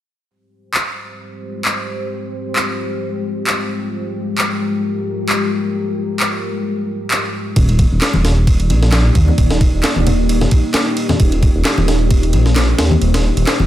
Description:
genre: breakbeat, breaks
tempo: 132 BPM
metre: 4/4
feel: swing 55% on 16ths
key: F dorian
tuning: A4 = 440 Hz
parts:
  - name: deep dark ambient pad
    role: sustained chords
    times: 1.3-13.7 s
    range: Ab3 to D5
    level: -21 LUFS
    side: left 1 dB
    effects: chorus, built-in reverb, sidechain pumping
  - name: electronic handclaps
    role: drums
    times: 0.7-13.6 s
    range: none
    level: -20 LUFS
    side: equal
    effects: none
  - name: phased detuned saw bass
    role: bass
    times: 7.6-13.7 s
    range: Eb1 to Eb2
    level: -14 LUFS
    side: equal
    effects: phaser
  - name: breakbeat sampler-style drum kit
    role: drums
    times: 7.6-13.6 s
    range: kick drum, ride cymbal, snare drum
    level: -16 LUFS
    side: equal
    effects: none
  - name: congas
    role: percussion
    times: 8.1-13.7 s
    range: none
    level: -20 LUFS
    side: left 2 dB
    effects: none
room: light reverb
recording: none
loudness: -14 LUFS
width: side -13 dB against mid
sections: 0.3-13.7 A section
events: none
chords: 0.3 Fmadd9; 7.6 Ebmaj7

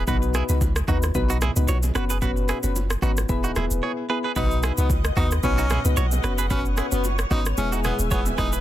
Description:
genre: afrobeats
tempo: 112 BPM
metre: 4/4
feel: swing 55% on 16ths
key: B major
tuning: A4 = 441 Hz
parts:
  - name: direct-recorded clean electric guitar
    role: riff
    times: 0.0-8.6 s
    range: D#4 to C#5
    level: -30 LUFS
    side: right 6 dB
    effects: harmonic tremolo, ping-pong delay
  - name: punchy sub bass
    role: bass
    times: 0.0-8.6 s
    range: D#1 to D#2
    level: -24 LUFS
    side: equal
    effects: none
  - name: soft electric-piano-like synth keys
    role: accompaniment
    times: 0.1-8.5 s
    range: G#3 to B4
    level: -28 LUFS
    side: left 3 dB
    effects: chorus, plate reverb
  - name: afro-pop drum kit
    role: drums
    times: 0.1-8.6 s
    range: kick drum, rim click, shaker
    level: -26 LUFS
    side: equal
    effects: overdrive
  - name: congas and bongos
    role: percussion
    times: 0.1-8.4 s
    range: none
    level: -36 LUFS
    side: right 4 dB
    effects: none
  - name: bright tenor saxophone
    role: melody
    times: 4.4-8.5 s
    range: B3 to D#4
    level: -30 LUFS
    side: equal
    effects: ping-pong delay, plate reverb
  - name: glassy FM pad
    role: sustained chords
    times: 4.6-8.6 s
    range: B4 to E6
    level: -33 LUFS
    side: left 1 dB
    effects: ensemble chorus, built-in reverb
room: little or no reverb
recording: dense, heavily limited modern master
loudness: -20 LUFS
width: side -13 dB against mid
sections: 0.0-4.4 A section; 4.4-8.6 B section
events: none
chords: 0.1 B; 2.0 F#sus4; 3.3 E; 4.4 B; 6.2 F#sus4; 7.6 E

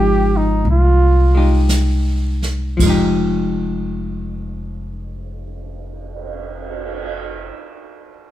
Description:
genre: jazz ballad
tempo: 53-62 BPM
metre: 4/4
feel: swing 68% on 8ths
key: F minor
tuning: A4 = 440 Hz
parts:
  - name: trumpet with bucket mute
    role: melody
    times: 0.0-1.7 s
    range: Eb4 to G4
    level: -18 LUFS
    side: right 4 dB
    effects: plate reverb
  - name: vintage hollow-body jazz guitar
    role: accompaniment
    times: 0.0-7.6 s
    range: F3 to G4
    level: -20 LUFS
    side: left 2 dB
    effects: none
  - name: upright bass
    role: bass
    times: 0.0-7.5 s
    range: F1 to C2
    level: -18 LUFS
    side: equal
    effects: none
  - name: jazz brush drum kit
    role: drums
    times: 0.6-7.1 s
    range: brushed snare drum, crash cymbal, cymbal swell, hi-hat, kick drum, snare drum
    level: -26 LUFS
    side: right 3 dB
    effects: none
room: moderate studio reverb, RT60 0.7 s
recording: heard from further back in the room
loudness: -14 LUFS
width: side -13 dB against mid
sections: 0.0-2.8 A section; 2.8-7.3 B section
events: slowing down 0.0-2.8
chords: 0.0 Fm9

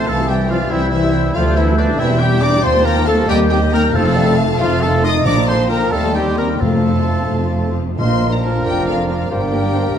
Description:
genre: quick classical-period movement for symphony orchestra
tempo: 92 BPM (dotted quarters)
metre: 6/8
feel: rubato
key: Bb major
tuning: A4 = 438 Hz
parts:
  - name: dark studio violin section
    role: melody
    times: 0.0-10.0 s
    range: D5 to Eb6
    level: -25 LUFS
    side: left 4 dB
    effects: none
  - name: large flute ensemble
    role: second line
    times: 0.0-10.0 s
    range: A4 to A6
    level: -28 LUFS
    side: left 2 dB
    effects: none
  - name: warm clarinet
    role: second line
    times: 0.0-10.0 s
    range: D4 to Eb5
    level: -25 LUFS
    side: left 2 dB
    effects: none
  - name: warm oboe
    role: second line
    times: 0.0-10.0 s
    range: D4 to F5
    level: -27 LUFS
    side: right 1 dB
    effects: none
  - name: warm studio violin section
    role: second line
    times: 0.0-10.0 s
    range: F4 to C6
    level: -27 LUFS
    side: left 3 dB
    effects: none
  - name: warm bassoon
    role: accompaniment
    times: 0.0-10.0 s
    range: Eb3 to Bb3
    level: -24 LUFS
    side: right 1 dB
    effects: none
  - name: warm studio viola section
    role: accompaniment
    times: 0.0-9.8 s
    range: D3 to F4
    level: -24 LUFS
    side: left 2 dB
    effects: none
  - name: mellow French horn section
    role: sustained chords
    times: 0.0-10.0 s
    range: D3 to G4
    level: -21 LUFS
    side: left 4 dB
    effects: none
  - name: bright trumpet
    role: stabs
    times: 0.0-10.0 s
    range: D4 to Eb5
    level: -25 LUFS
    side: right 2 dB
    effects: none
  - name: dark studio double bass section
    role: bass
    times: 0.1-10.0 s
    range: E1 to Eb2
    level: -20 LUFS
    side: right 3 dB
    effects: none
  - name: warm studio cello section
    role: bass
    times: 0.1-10.0 s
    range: C2 to Bb2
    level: -22 LUFS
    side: right 1 dB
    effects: none
  - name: timpani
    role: percussion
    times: 3.9-8.6 s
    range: F2 to Bb2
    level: -25 LUFS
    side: equal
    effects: none
room: moderate scoring stage reverb, RT60 1.6 s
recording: dark, warm production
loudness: -13 LUFS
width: side -8 dB against mid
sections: 0.0-8.0 A section; 8.0-10.0 B section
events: none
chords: 0.1 C; 1.4 G7/D; 2.0 C/E; 2.6 Cm7/Eb; 3.9 F7; 5.3 Bb; 5.9 Cm/Eb; 6.6 F; 8.0 Bb; 9.3 Gm

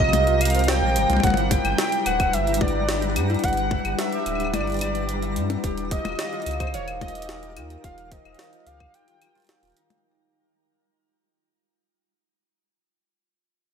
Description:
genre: IDM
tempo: 109 BPM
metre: 4/4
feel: straight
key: unclear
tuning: A4 = 445 Hz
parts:
  - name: warm velvety synth lead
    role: melody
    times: 0.0-9.8 s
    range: Db5 to G5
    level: -26 LUFS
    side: right 1 dB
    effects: chorus, cassette tape, tape echo, shimmer reverb
  - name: glassy FM pad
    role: sustained chords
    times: 0.0-10.0 s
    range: C3 to G5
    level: -31 LUFS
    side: equal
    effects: ensemble chorus, built-in reverb, shimmer reverb
  - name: concert harp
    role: arpeggios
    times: 0.0-12.5 s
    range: Eb4 to F5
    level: -30 LUFS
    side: left 2 dB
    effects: digital delay, shimmer reverb
  - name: warm sub bass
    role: bass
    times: 0.0-9.7 s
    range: D1 to G2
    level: -27 LUFS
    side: equal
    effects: tube saturation
  - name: electronic kick drum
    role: drums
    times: 0.0-8.9 s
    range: none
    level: -26 LUFS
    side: equal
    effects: studio reverb
  - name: jungle sampler-style drum kit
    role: drums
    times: 0.0-10.0 s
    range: claves, hi-hat, snare drum, toms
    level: -28 LUFS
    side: left 3 dB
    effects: studio reverb
  - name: twinkling granular texture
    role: texture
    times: 0.0-10.1 s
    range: G3 to Bb5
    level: -32 LUFS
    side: equal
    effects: built-in reverb, shimmer reverb
room: light reverb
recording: none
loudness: -20 LUFS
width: side -7 dB against mid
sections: 0.0-10.0 A section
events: fade-out 1.2-10.0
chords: 0.0 Cm7; 1.2 Gmaj7; 5.6 Eb

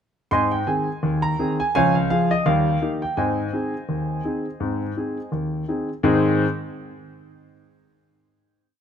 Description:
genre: ragtime piano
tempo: 84 BPM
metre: 2/4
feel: swing 55% on 16ths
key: Ab major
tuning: A4 = 437 Hz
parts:
  - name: clear grand piano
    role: solo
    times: 0.3-6.4 s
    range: Db2 to C6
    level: -20 LUFS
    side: equal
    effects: none
room: moderate echo chamber reverb, RT60 2.5 s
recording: close, detailed microphones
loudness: -20 LUFS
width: side -8 dB against mid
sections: 0.3-6.0 A section; 6.0-7.5 final chord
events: none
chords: 0.3 Ab; 1.7 Db; 2.5 Eb; 3.2 Ab

